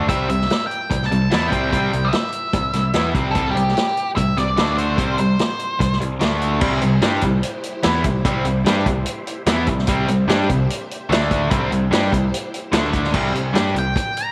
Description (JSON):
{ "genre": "classic rock", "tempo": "147 BPM", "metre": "4/4", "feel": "straight", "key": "C major", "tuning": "A4 = 441 Hz", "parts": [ { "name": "crunchy overdriven guitar", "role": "riff", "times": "0.0-13.9 s", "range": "C3 to G4", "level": "-26 LUFS", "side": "equal", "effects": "spring reverb" }, { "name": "overdriven electric guitar", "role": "riff", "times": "0.0-13.9 s", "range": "C3 to G4", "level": "-27 LUFS", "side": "equal", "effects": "spring reverb" }, { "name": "modern bright picked electric bass", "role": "bass", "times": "0.0-13.9 s", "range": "C2 to G2", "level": "-26 LUFS", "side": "equal", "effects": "none" }, { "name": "octave-fuzz lead guitar", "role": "melody", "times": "0.1-6.0, 13.8-14.3 s", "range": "G4 to Bb5", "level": "-25 LUFS", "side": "equal", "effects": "distortion, slapback echo" }, { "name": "vintage drum kit", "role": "drums", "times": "0.1-14.3 s", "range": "crash cymbal, hi-hat, kick drum, snare drum", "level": "-25 LUFS", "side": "equal", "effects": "none" }, { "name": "phased string machine", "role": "sustained chords", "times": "7.2-13.1 s", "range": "D4 to E5", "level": "-35 LUFS", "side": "equal", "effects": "none" } ], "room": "light reverb, small room ambience", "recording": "none", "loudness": "-19 LUFS", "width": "mono", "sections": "0.0-6.6 A section; 6.6-13.1 B section; 13.1-14.3 C section", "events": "lead electric guitar solo 13.1-14.3", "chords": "0.1 C; 4.6 D5; 5.0 C5; 6.2 D5; 6.6 C; 11.1 D5; 11.5 C; 12.7 D5; 13.1 C5", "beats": "| 0.08 0.49 0.90 1.31 | 1.72 2.12 2.53 2.94 | 3.35 3.76 4.17 4.58 | 4.99 5.39 5.80 6.21 | 6.62 7.03 7.43 7.84 | 8.25 8.66 9.06 9.47 | 9.88 10.29 10.69 11.10 | 11.51 11.92 12.32 12.73 | 13.14 13.55 13.96" }